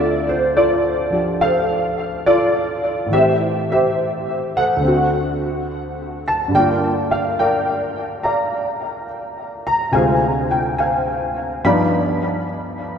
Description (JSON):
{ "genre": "solo jazz", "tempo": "70 BPM", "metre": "4/4", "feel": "swing 68% on 8ths", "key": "unclear", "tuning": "A4 = 435 Hz", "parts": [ { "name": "warm concert grand piano", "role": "solo", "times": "0.0-13.0 s", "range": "D2 to B5", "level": "-16 LUFS", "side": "equal", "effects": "ensemble chorus, diffuse ambient delay" } ], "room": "wet lush hall reverb, RT60 2.8 s", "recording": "dreamy mix soaked in reverb", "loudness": "-16 LUFS", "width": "side -7 dB against mid", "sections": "0.0-13.0 A section", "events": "none", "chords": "0.0 Dm7; 3.1 Am7; 4.8 D7; 6.5 Gm7; 9.9 Dm7b5; 11.6 G7b13" }